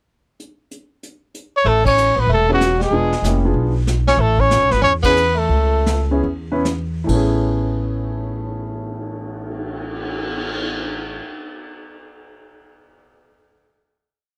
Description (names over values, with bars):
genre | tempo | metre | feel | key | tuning
jazz, small-group swing and bop | 132-190 BPM | 4/4 | swing 64% on 8ths | A major | A4 = 440 Hz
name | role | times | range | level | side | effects
vintage brush drum kit | drums | 0.4-10.6 s | brushed snare drum, crash cymbal, cymbal swell, hi-hat, kick drum, ride cymbal, snare drum | -29 LUFS | equal | none
warm trumpet | melody | 1.6-6.1 s | F#4 to C#5 | -19 LUFS | equal | none
upright bass | bass | 1.6-11.2 s | E1 to E2 | -23 LUFS | equal | none
breathy tenor saxophone | second line | 1.7-6.1 s | F#3 to C#4 | -25 LUFS | equal | none
warm grand piano | accompaniment | 2.5-11.3 s | A2 to B4 | -25 LUFS | equal | none
room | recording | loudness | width
light reverb | none | -18 LUFS | mono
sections
0.4-1.7 pickup bar; 1.7-7.1 A section; 7.1-10.7 final chord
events
band accent 1.8, 5.0; slowing down 4.2-7.1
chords
0.4 N.C.; 1.7 A; 2.9 E7b9; 4.2 Aadd9; 7.1 Amaj9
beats
| 0.39 0.71 1.02 1.34 | 1.66 1.97 2.29 2.60 | 2.92 3.23 3.55 3.86 | 4.18 4.50 4.82 5.15 | 5.50 5.86 6.24 6.65 | 7.08 7.54 7.99 8.45 | 8.90 9.36 9.81 10.26